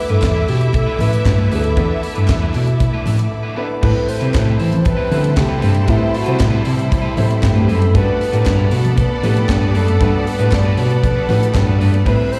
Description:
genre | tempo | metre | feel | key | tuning
disco | 117 BPM | 4/4 | straight | A dorian | A4 = 440 Hz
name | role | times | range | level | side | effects
mellow alto flute | melody | 0.0-12.4 s | E4 to D5 | -25 LUFS | equal | slapback echo
clear studio string section | second line | 0.0-12.4 s | G3 to B5 | -28 LUFS | equal | slapback echo
warm concert grand piano | accompaniment | 0.0-12.4 s | A3 to C5 | -28 LUFS | equal | slapback echo
clear studio string section | sustained chords | 0.0-12.4 s | G3 to D6 | -33 LUFS | equal | none
electric guitar at the edge of break-up | accompaniment | 0.1-12.4 s | G3 to D5 | -32 LUFS | equal | slapback echo
bell-like tine electric piano | bass | 0.1-12.2 s | D2 to E3 | -18 LUFS | equal | none
tight funk drum kit | drums | 0.1-12.4 s | crash cymbal, handclaps, hi-hat, kick drum, snare drum | -22 LUFS | equal | none
congas | percussion | 0.2-12.0 s | none | -27 LUFS | equal | slapback echo
group handclap | percussion | 0.2-11.7 s | none | -38 LUFS | equal | none
room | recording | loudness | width
little or no reverb | live gig heard through the venue's PA, recital hall reverb | -16 LUFS | mono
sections
0.0-3.8 A section; 3.8-12.4 B section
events
break 3.3-3.8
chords
0.0 E7sus4; 3.8 Am9; 7.9 Gmaj9

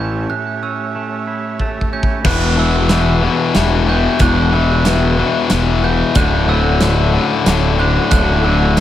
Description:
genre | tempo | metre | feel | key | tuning
post-rock | 92 BPM | 3/4 | straight | unclear | A4 = 438 Hz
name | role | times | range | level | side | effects
rich studio string section | sustained chords | 0.0-8.8 s | D3 to A5 | -26 LUFS | right 4 dB | none
glockenspiel with hard plastic mallets | arpeggios | 0.0-8.8 s | E6 to G6 | -23 LUFS | right 11 dB | tape echo
twangy electric guitar | arpeggios | 0.0-2.3 s | A2 to E4 | -26 LUFS | right 2 dB | spring reverb, tape echo
fuzz fingered electric bass | bass | 0.0-8.8 s | D1 to A1 | -16 LUFS | equal | overdrive
big rock drum kit | drums | 1.6-8.8 s | crash cymbal, hi-hat, kick drum, snare drum | -20 LUFS | right 1 dB | none
distorted electric guitar | riff | 2.2-8.8 s | D2 to E3 | -15 LUFS | left 6 dB | overdrive
room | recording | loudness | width
small room ambience | none | -12 LUFS | side -12 dB against mid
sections
0.0-2.3 A section; 2.3-8.8 B section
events
drum fill 1.6-2.3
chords
0.0 A7; 2.3 Em7; 6.2 Dmaj7

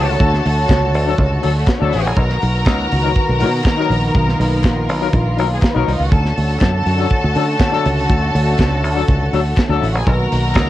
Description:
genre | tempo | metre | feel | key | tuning
disco | 122 BPM | 4/4 | straight | unclear | A4 = 439 Hz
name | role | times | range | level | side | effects
clear studio string section | second line | 0.0-10.7 s | G#3 to A#5 | -22 LUFS | equal | cassette tape
dark studio string section | sustained chords | 0.0-10.7 s | D3 to C#5 | -22 LUFS | equal | cassette tape
warm horn section | stabs | 0.0-9.9 s | F#3 to A#4 | -22 LUFS | left 8 dB | cassette tape, analog delay
fingered electric bass | bass | 0.0-10.7 s | A1 to D3 | -17 LUFS | equal | none
tight funk drum kit | drums | 0.2-10.7 s | hi-hat, kick drum, snare drum | -19 LUFS | equal | cassette tape
group handclap | percussion | 0.7-10.7 s | none | -33 LUFS | left 12 dB | none
room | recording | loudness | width
light reverb | home recording on cassette | -13 LUFS | side -14 dB against mid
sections
0.0-10.7 A section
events
none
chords
0.0 Dmaj7; 2.2 Bmaj7; 6.1 Dmaj7; 10.1 Bmaj7

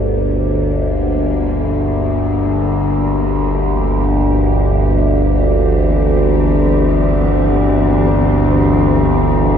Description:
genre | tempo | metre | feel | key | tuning
dark ambient drone | free time | none | none | unclear | A4 = 440 Hz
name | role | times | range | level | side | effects
muted studio cello section | sustained chords | 0.0-9.6 s | D3 to G4 | -23 LUFS | right 1 dB | shimmer reverb
overtone-sweeping drone | drone | 0.0-9.6 s | G1 to D2 | -13 LUFS | equal | chorus, built-in reverb
room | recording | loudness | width
moderate huge ambient reverb, RT60 7.5 s | dark, warm production | -12 LUFS | side -8 dB against mid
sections
0.0-9.6 A section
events
fade-in on cello section 0.0-9.6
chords
0.0 Gm; 3.7 C

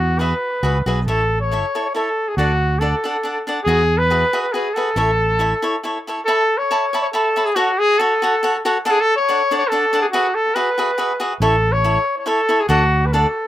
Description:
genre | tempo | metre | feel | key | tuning
mexican folk, mariachi | 139 BPM | 3/4 | straight | A major | A4 = 441 Hz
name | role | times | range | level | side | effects
clear trumpet | melody | 0.0-13.5 s | F#4 to C#5 | -18 LUFS | equal | slapback echo
fretless electric bass | bass | 0.0-5.5, 11.4-13.2 s | A1 to E2 | -19 LUFS | right 1 dB | none
cavaquinho | accompaniment | 0.2-13.3 s | D4 to B5 | -21 LUFS | equal | slapback echo
room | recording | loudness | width
little or no reverb | recorded outdoors, with no room sound | -16 LUFS | side -13 dB against mid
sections
0.0-6.3 A section; 6.3-13.5 A section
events
none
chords
0.0 Eadd9; 1.1 A; 2.4 D; 3.7 Eadd9; 5.0 A; 6.3 Aadd9; 7.6 F#m; 8.8 D; 10.1 Eadd9; 11.4 A; 12.7 D

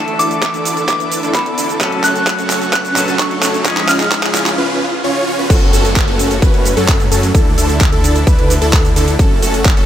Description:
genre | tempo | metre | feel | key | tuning
EDM, festival progressive house | 130 BPM | 4/4 | straight | F# minor | A4 = 440 Hz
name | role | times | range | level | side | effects
clean electric guitar | accompaniment | 0.0-4.6 s | E3 to A4 | -22 LUFS | left 1 dB | lush chorus, sidechain pumping
lush unison pad | sustained chords | 0.0-9.9 s | D3 to D6 | -26 LUFS | right 1 dB | chorus, sidechain pumping
supersaw chords | riff | 0.0-9.9 s | C#4 to C#5 | -19 LUFS | right 1 dB | sidechain pumping, low-pass filter, tape echo
wide detuned saw bass | bass | 0.0-9.9 s | F#1 to F#2 | -20 LUFS | equal | chorus, sidechain pumping, high-pass filter
riser and downlifter | sound effects | 0.4-9.2 s | none | -25 LUFS | right 1 dB | none
pop drum kit | drums | 0.1-9.9 s | crash cymbal, handclaps, hi-hat, shaker | -19 LUFS | right 1 dB | overdrive
soft synth bell | melody | 0.2-4.6 s | B5 to F#6 | -19 LUFS | equal | chorus, tape echo
electronic kick drum | drums | 0.4-9.7 s | none | -13 LUFS | equal | overdrive, high-pass filter on kick
plucky unison lead | arpeggios | 5.5-9.9 s | A4 to B4 | -21 LUFS | left 1 dB | sidechain pumping, tape echo
room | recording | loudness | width
light reverb | none | -11 LUFS | side -11 dB against mid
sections
0.0-5.5 A section; 5.5-9.9 B section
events
build-up 0.0-5.5; drum fill 0.0-4.6; filter sweep on supersaw synth 0.0-5.5; riser 0.4-5.5; break 4.6-5.5; drop 5.5-9.9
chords
0.0 Dsus2; 1.8 F#m; 3.7 C#; 5.5 F#m; 7.3 Dsus2; 9.2 F#m

